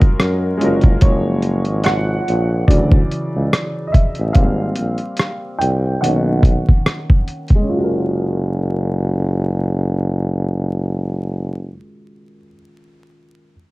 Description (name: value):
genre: lo-fi hip hop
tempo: 72 BPM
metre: 4/4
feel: swing 58% on 16ths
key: F# major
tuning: A4 = 440 Hz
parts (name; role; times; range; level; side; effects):
- clear upright piano; accompaniment; 0.0-13.5 s; C#3 to G5; -22 LUFS; equal; low-pass filter
- clear tuba; bass; 0.0-11.8 s; F#1 to F#2; -19 LUFS; equal; none
- lo-fi sampler-style drum kit; drums; 0.0-7.7 s; hi-hat, kick drum, rim click; -13 LUFS; equal; overdrive
room: light reverb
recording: dark, warm production, vinyl crackle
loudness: -15 LUFS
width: side -21 dB against mid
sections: 0.0-1.0 A section; 1.0-7.7 B section; 7.7-11.0 C section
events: upright piano solo 1.0-7.7; filter sweep on upright piano 1.0-7.7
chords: 0.0 F#maj9; 2.7 Dmaj9; 4.3 G#maj9; 6.0 Bmaj9; 7.7 F#maj9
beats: 0.18 | 1.02 1.85 2.68 3.52 | 4.35 5.18 6.02 6.85 | 7.68 8.52 9.35 10.18